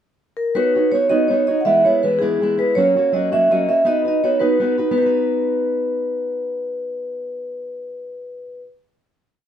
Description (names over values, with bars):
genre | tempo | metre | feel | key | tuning
celtic folk, Celtic jig | 109 BPM (dotted quarters) | 6/8 | straight | B major | A4 = 440 Hz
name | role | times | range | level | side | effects
vibraphone with medium mallets | melody | 0.4-8.6 s | G#4 to F#5 | -18 LUFS | equal | none
fingerpicked steel-string acoustic guitar | accompaniment | 0.5-8.7 s | E3 to C#5 | -22 LUFS | right 3 dB | none
room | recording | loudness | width
light reverb | minimal, uncompressed stereo recording | -16 LUFS | side -9 dB against mid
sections
0.0-0.6 pickup bar; 0.6-4.9 A section; 4.9-7.1 final chord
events
none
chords
0.0 N.C.; 0.6 Badd9; 1.6 E; 2.7 F#; 3.8 B